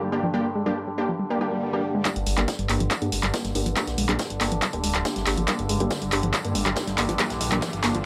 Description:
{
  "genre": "driving peak-time techno",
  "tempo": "140 BPM",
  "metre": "4/4",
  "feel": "straight",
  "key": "G phrygian",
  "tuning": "A4 = 439 Hz",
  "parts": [
    { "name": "tight sequenced synth", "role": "riff", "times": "0.0-8.0 s", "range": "F3 to Ab3", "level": "-33 LUFS", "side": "equal", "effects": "chorus, tube saturation, sidechain pumping, tape echo" },
    { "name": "rave stab", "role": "stabs", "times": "0.0-8.0 s", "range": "Bb3 to G4", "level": "-31 LUFS", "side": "equal", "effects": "chorus, built-in reverb, cassette tape, sidechain pumping, tape echo" },
    { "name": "overtone-sweeping drone", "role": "drone", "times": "0.0-8.1 s", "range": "G2 to D3", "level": "-35 LUFS", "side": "equal", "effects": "chorus, built-in reverb, sidechain pumping" },
    { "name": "swell and riser", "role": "sound effects", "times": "1.3-8.1 s", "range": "none", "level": "-41 LUFS", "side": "equal", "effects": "none" },
    { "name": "electronic kick drum", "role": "drums", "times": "2.1-7.7 s", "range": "none", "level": "-33 LUFS", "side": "equal", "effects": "high-pass filter on kick, high-pass filter on room" },
    { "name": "natural country drum kit", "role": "drums", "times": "2.1-7.9 s", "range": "hi-hat, snare drum, tambourine", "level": "-39 LUFS", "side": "equal", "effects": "sidechain pumping on hats, high-pass filter on hats, high-pass filter on snare, sidechain pumping on perc, high-pass filter on perc, high-pass filter on room" },
    { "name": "punchy analog drum machine", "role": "drums", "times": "2.1-8.0 s", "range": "handclaps, hi-hat", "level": "-29 LUFS", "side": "equal", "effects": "low-pass filter on snare, sidechain pumping on hats, low-pass filter on hats, low-pass filter on room" },
    { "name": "detuned saw bass", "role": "bass", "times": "2.2-8.0 s", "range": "D1 to G2", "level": "-31 LUFS", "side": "equal", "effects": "sidechain pumping" }
  ],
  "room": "light reverb",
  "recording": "dry, gritty hardware recording, transformer saturation",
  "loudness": "-25 LUFS",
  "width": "mono",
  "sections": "0.0-2.1 A section; 2.1-8.1 B section",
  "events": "filter sweep on synth arpeggio sound 0.0-2.1, 2.1-8.1; swell 1.3-2.1; build-up 2.1-8.1; drum fill 2.1-8.1",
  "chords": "0.0 Gm"
}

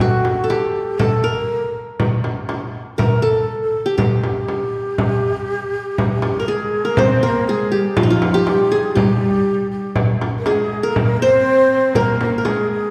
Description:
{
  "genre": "Arabic maqam ensemble",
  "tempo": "120 BPM",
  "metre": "4/4",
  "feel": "straight",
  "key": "G maqam nahawand, G maqam kurd from 7.0 s",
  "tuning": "A4 = 443 Hz",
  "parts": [
    { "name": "qanun", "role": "melody", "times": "0.0-12.9 s", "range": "Eb4 to C5", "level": "-22 LUFS", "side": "equal", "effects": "none" },
    { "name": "breathy mellow ney", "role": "second line", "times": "0.0-12.9 s", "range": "F4 to C5", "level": "-24 LUFS", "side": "equal", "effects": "none" },
    { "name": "frame drum", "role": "percussion", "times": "0.0-12.6 s", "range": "none", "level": "-22 LUFS", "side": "equal", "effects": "none" },
    { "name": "warm studio cello section", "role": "second line", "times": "6.5-12.9 s", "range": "F3 to C4", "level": "-25 LUFS", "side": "equal", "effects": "none" }
  ],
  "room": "wet scoring stage reverb, RT60 1.8 s",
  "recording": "heard from further back in the room",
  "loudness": "-18 LUFS",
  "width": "mono",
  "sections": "0.0-7.0 A section; 7.0-12.9 B section",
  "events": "none",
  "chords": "none"
}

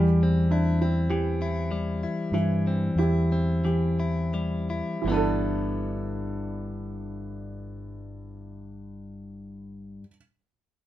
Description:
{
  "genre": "acoustic folk-pop ballad",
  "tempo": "41-52 BPM",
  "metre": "4/4",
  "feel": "straight",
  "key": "G major",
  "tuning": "A4 = 445 Hz",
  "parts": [
    { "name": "direct-recorded clean electric guitar", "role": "accompaniment", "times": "0.0-10.1 s", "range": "G2 to B4", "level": "-28 LUFS", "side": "left 2 dB", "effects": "none" },
    { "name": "felt-muted upright piano", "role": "arpeggios", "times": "0.0-10.1 s", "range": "E3 to A4", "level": "-31 LUFS", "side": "right 4 dB", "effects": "none" },
    { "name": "fingered electric bass", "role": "bass", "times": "0.0-10.0 s", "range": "G1 to G2", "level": "-28 LUFS", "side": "equal", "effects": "none" }
  ],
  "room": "little or no reverb",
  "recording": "minimal, uncompressed stereo recording",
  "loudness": "-24 LUFS",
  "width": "side -13 dB against mid",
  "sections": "0.0-5.0 A section; 5.0-10.9 B section",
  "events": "slowing down 0.0-5.0",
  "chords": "0.0 C/E; 5.0 G69"
}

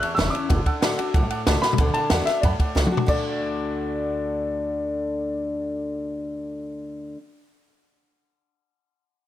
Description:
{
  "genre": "rockabilly",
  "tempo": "186 BPM",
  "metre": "4/4",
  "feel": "straight",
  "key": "D major",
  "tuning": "A4 = 444 Hz",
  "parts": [
    { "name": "dark upright piano", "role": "melody", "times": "0.0-7.1 s", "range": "D5 to F#6", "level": "-27 LUFS", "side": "left 1 dB", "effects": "none" },
    { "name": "bright upright piano", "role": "accompaniment", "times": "0.0-7.1 s", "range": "E5 to E6", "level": "-32 LUFS", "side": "right 5 dB", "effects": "none" },
    { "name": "picked steel-string acoustic guitar", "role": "accompaniment", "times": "0.0-7.2 s", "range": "E2 to F#4", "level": "-27 LUFS", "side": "left 2 dB", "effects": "none" },
    { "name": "upright bass", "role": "bass", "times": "0.0-7.1 s", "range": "E1 to F#2", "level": "-28 LUFS", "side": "equal", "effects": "none" },
    { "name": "compact cocktail drum kit", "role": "drums", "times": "0.0-3.2 s", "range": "crash cymbal, kick drum, ride cymbal, snare drum, toms", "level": "-23 LUFS", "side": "equal", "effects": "none" }
  ],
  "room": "light reverb, small room ambience",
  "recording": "none",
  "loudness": "-21 LUFS",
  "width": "side -12 dB against mid",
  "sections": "0.0-1.8 A section; 1.8-3.1 B section; 3.1-5.7 C section",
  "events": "drum fill 1.6, 2.8-3.1",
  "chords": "0.0 A7; 0.5 D"
}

